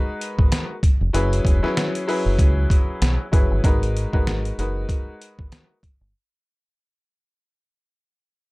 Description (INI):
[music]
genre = hip hop, boom-bap hip-hop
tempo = 96 BPM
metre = 4/4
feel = swing 57% on 16ths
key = G# minor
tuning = A4 = 440 Hz
[part]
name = warm upright piano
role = accompaniment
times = 0.0-5.8 s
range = F#3 to B4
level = -25 LUFS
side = left 1 dB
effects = high-pass filter, low-pass filter
[part]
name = trip hop sampler-style drum kit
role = drums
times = 0.2-6.0 s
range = hi-hat, kick drum, snare drum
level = -20 LUFS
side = equal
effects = none
[part]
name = deep dub fingered electric bass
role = bass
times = 0.4-6.1 s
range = E1 to C#2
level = -21 LUFS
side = equal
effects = none
[sound]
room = little or no reverb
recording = dark, warm production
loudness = -18 LUFS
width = side -23 dB against mid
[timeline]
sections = 0.0-3.6 A section; 3.6-6.1 B section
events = fade-out 3.6-6.1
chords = 0.0 G#m7; 1.1 F#7sus4; 3.6 G#m7